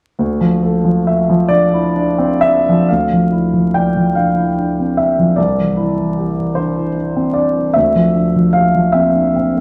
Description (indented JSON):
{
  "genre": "classical, impressionist solo piano",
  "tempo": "40-51 BPM (dotted quarters)",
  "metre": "6/8",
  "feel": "rubato",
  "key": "D minor",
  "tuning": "A4 = 441 Hz",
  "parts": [
    { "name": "warm grand piano", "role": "solo", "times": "0.2-9.6 s", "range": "C2 to G5", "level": "-14 LUFS", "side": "equal", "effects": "none" }
  ],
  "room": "moderate recital hall reverb, RT60 1.5 s",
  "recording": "vinyl crackle",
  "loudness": "-14 LUFS",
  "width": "mono",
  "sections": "0.2-2.9 A section; 2.9-9.6 B section",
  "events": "none",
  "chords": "0.2 Dmadd9; 5.4 Cadd9; 7.8 Dm11"
}